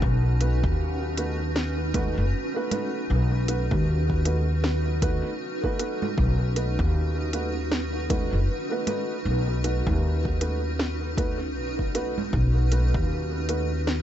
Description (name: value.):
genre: ambient dub.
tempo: 78 BPM.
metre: 4/4.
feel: swing 60% on 16ths.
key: B mixolydian.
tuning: A4 = 438 Hz.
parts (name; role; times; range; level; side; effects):
granular cloud pad; sustained chords; 0.0-14.0 s; C#4 to B4; -31 LUFS; equal; built-in reverb.
upright bass; bass; 0.0-14.0 s; F#1 to D#2; -24 LUFS; equal; none.
electronic kick drum; drums; 0.0-13.1 s; none; -28 LUFS; equal; none.
dark upright piano; stabs; 0.4-13.7 s; A3 to B4; -32 LUFS; right 2 dB; dub echo.
organic electronic drum kit; drums; 0.4-14.0 s; congas, hi-hat, snare drum; -32 LUFS; right 2 dB; dub echo.
room: little or no reverb.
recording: nothing above 7.9 kHz.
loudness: -23 LUFS.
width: side -11 dB against mid.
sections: 0.0-14.0 A section.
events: none.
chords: 0.0 B7.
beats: | 0.03 0.79 1.56 2.33 | 3.10 3.87 4.64 5.41 | 6.18 6.95 7.72 8.49 | 9.26 10.03 10.79 11.56 | 12.33 13.10 13.87.